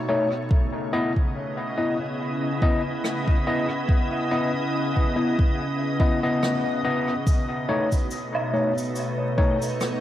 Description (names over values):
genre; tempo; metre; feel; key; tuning
ambient dub; 71 BPM; 4/4; swing 55% on 16ths; unclear; A4 = 442 Hz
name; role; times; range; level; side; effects
soft additive organ-like pad; sustained chords; 0.0-10.0 s; B2 to D#5; -27 LUFS; equal; ensemble chorus, built-in reverb
overdriven tine electric piano; stabs; 0.1-9.6 s; A3 to D#5; -26 LUFS; left 2 dB; lush chorus, dub echo
electronic kick drum; drums; 0.5-9.6 s; none; -21 LUFS; equal; none
rim click, cabasa and woodblock; drums; 3.0-10.0 s; none; -34 LUFS; equal; dub echo
bubbling stepped-filter texture; texture; 7.3-10.0 s; B4; -36 LUFS; right 4 dB; chorus, built-in reverb
room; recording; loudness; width
moderate concert hall reverb, RT60 2.0 s; vinyl crackle; -21 LUFS; side -12 dB against mid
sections
0.0-10.0 A section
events
none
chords
0.0 B9; 0.5 C#m9; 7.3 B9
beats
| 0.51 1.35 2.20 3.04 | 3.89 4.73 5.58 6.42 | 7.27 8.11 8.96 9.80